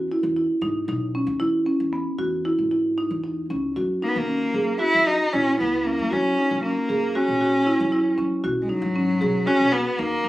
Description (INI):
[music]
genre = contemporary instrumental, chamber music in an uneven meter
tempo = 230 BPM (eighths)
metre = 9/8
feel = straight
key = unclear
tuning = A4 = 439 Hz
[part]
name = upright bass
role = bass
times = 0.0-10.3 s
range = B1 to F#3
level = -34 LUFS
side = equal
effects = none
[part]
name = marimba with medium mallets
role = arpeggios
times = 0.1-10.3 s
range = B3 to G#4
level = -23 LUFS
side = right 1 dB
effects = none
[part]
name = dark cello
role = melody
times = 4.0-10.3 s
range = F#3 to E4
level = -21 LUFS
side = left 1 dB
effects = none
[sound]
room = little or no reverb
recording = recorded on a phone in the room, studio ambience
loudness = -20 LUFS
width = side -16 dB against mid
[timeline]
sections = 0.0-10.3 A section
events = none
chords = 0.0 Emaj7; 3.8 F#7; 8.4 B